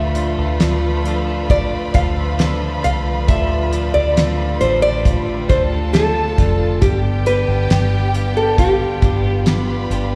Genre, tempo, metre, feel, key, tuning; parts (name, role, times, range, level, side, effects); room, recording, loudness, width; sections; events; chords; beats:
pop ballad; 68 BPM; 4/4; straight; D dorian; A4 = 441 Hz
nylon-string guitar; melody; 0.0-10.2 s; G4 to F5; -22 LUFS; equal; slapback echo
warm studio violin section; second line; 0.0-10.2 s; G4 to B5; -31 LUFS; equal; slapback echo, delay
bell-like tine electric piano; accompaniment; 0.0-10.2 s; G2 to F5; -28 LUFS; equal; slapback echo
warm studio string section; sustained chords; 0.0-10.2 s; D3 to G4; -30 LUFS; equal
direct-recorded clean electric guitar; arpeggios; 0.0-10.2 s; G2 to A4; -31 LUFS; equal; lush chorus, slapback echo
vintage muted fingered electric bass; bass; 0.0-10.2 s; F1 to D2; -22 LUFS; equal
damped 70s drum kit; drums; 0.1-10.1 s; hi-hat, kick drum, snare drum; -19 LUFS; equal
light reverb; live gig heard through the venue's PA, recital hall reverb; -17 LUFS; mono
0.0-10.2 A section
0.0 Dm; 6.8 G
0.60 1.50 2.39 | 3.28 4.17 5.05 5.94 | 6.82 7.71 8.58 9.46